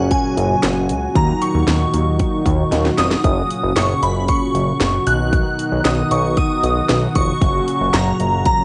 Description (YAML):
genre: synth-pop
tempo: 115 BPM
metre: 4/4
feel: straight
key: unclear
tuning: A4 = 440 Hz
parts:
  - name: brassy analog pad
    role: sustained chords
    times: 0.0-8.6 s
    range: Bb2 to Gb4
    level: -23 LUFS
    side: equal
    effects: chorus, cassette tape
  - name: fat analog bass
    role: bass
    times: 0.0-8.5 s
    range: F1 to Eb2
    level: -22 LUFS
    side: equal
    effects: none
  - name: shimmering bell with halo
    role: melody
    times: 0.1-8.6 s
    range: Ab5 to F#6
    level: -24 LUFS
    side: equal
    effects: ensemble chorus, cassette tape, tape echo
  - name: house drum kit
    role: drums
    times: 0.1-8.6 s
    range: hi-hat, kick drum, snare drum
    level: -22 LUFS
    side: equal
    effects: cassette tape
room: moderate spring reverb, RT60 1.3 s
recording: home recording on cassette, nothing above 10.3 kHz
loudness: -17 LUFS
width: mono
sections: 0.0-8.6 A section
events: drum fill 2.7-3.2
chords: 0.0 Gb; 1.2 Ebm; 3.2 Gb; 5.1 B; 7.4 Gb